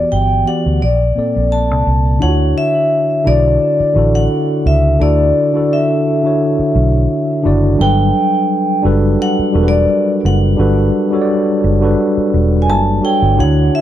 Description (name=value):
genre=R&B, neo-soul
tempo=86 BPM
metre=4/4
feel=swing 54% on 16ths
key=D major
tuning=A4 = 442 Hz
part: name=vibraphone with medium hard mallets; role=melody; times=0.0-13.8 s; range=D5 to A5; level=-17 LUFS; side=left 1 dB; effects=none
part: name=mellow tine electric piano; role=accompaniment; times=0.0-13.8 s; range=Bb2 to D5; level=-15 LUFS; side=equal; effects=medium stereo tremolo
part: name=vintage muted fingered electric bass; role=bass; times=0.0-13.7 s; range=E1 to D2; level=-14 LUFS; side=right 1 dB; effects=none
room=light reverb, studio reverb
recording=dark, warm production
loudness=-11 LUFS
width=side -12 dB against mid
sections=0.0-2.2 A section; 2.2-13.8 B section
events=none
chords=0.0 Em7; 0.8 Bbmaj9; 2.2 Dmaj9; 7.8 Gmaj9